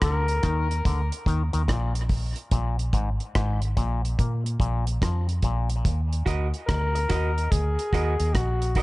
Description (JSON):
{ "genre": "dub reggae", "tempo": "72 BPM", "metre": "4/4", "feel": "swing 64% on 16ths", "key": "Eb harmonic minor", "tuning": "A4 = 440 Hz", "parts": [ { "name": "mellow flugelhorn", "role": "melody", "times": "0.0-0.8, 6.7-8.8 s", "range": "D4 to Bb4", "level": "-29 LUFS", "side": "left 2 dB", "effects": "dub echo" }, { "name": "auto-wah clav", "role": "riff", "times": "0.0-5.7 s", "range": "Ab2 to Bb3", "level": "-33 LUFS", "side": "left 4 dB", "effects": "overdrive, dub echo" }, { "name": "vintage muted fingered electric bass", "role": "bass", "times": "0.0-8.8 s", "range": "Ab1 to Bb2", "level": "-25 LUFS", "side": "equal", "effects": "none" }, { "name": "deep reggae drum kit", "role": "drums", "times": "0.0-8.8 s", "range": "hi-hat, kick drum, rim click", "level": "-26 LUFS", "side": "equal", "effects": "none" }, { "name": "electric guitar through a small old amp", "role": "accompaniment", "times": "6.3-8.8 s", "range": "Gb4 to Eb5", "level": "-32 LUFS", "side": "right 4 dB", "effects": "dub echo" } ], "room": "little or no reverb", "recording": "nothing above 10.9 kHz", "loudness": "-22 LUFS", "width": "side -20 dB against mid", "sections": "0.0-5.8 A section; 5.8-8.8 A section", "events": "break 0.0-5.8", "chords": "0.0 Eb5; 2.5 Bb5; 5.8 Ebm" }